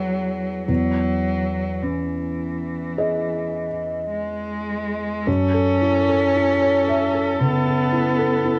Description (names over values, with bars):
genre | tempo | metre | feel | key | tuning
neoclassical piano and strings | 49-58 BPM | 4/4 | rubato | F# dorian | A4 = 445 Hz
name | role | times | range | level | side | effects
rich cello | second line | 0.0-8.6 s | E3 to C#4 | -24 LUFS | equal | cassette tape
felt-muted upright piano | accompaniment | 0.0-8.6 s | E2 to E5 | -25 LUFS | equal | cassette tape
warm viola | accompaniment | 5.3-8.6 s | A4 | -30 LUFS | equal | cassette tape, plate reverb
room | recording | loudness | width
moderate small room reverb, RT60 0.5 s | home recording on cassette | -22 LUFS | mono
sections
0.0-5.3 A section; 5.3-8.6 B section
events
none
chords
0.0 E; 0.7 C#madd9/E; 5.3 F#m7